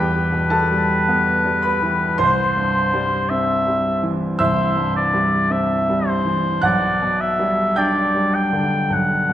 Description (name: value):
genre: classical, romantic duo for oboe and grand piano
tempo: 54 BPM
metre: 4/4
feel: rubato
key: unclear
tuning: A4 = 440 Hz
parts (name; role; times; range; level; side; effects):
- warm oboe; melody; 0.0-9.3 s; B4 to G5; -20 LUFS; left 2 dB; none
- bright grand piano; accompaniment; 0.0-9.3 s; B1 to G6; -19 LUFS; right 1 dB; none
room: wet recital hall reverb, RT60 1.7 s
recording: recorded in a church or concert hall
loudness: -16 LUFS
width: side -12 dB against mid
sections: 0.0-9.3 A section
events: none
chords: 0.0 Em; 2.2 C; 6.6 G/B